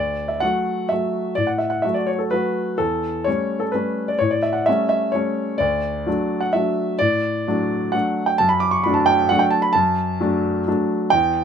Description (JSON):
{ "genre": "classical, piano waltz", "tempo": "129 BPM", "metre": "3/4", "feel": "uneven beats, rubato", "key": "D major", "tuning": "A4 = 438 Hz", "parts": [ { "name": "warm grand piano", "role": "solo", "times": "0.0-11.4 s", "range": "D2 to D6", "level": "-18 LUFS", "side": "equal", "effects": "none" } ], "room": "light reverb", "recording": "close, detailed microphones", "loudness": "-18 LUFS", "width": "side -7 dB against mid", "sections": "0.0-11.4 A section", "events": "none", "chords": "0.0 D; 2.8 A7/E; 5.6 D; 8.4 D/F#", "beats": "0.43 0.92 | 1.38 1.84 2.33 | 2.80 3.27 3.75 | 4.21 4.67 5.15 | 5.61 6.07 6.55 | 7.01 7.47 7.94 | 8.40 8.85 9.30 | 9.76 10.21 10.67 | 11.13" }